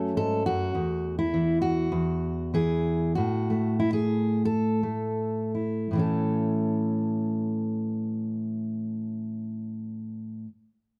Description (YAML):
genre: folk, solo fingerstyle acoustic guitar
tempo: 78-104 BPM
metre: 4/4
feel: straight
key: A major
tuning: A4 = 440 Hz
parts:
  - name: fingerpicked steel-string acoustic guitar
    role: solo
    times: 0.0-10.5 s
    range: E2 to A4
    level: -28 LUFS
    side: equal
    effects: none
room: light reverb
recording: none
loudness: -28 LUFS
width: mono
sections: 0.0-3.2 A section; 3.2-5.9 B section; 5.9-9.0 C section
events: slowing down 0.8-5.9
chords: 0.0 F#m; 0.8 N.C.; 3.2 A5; 5.9 A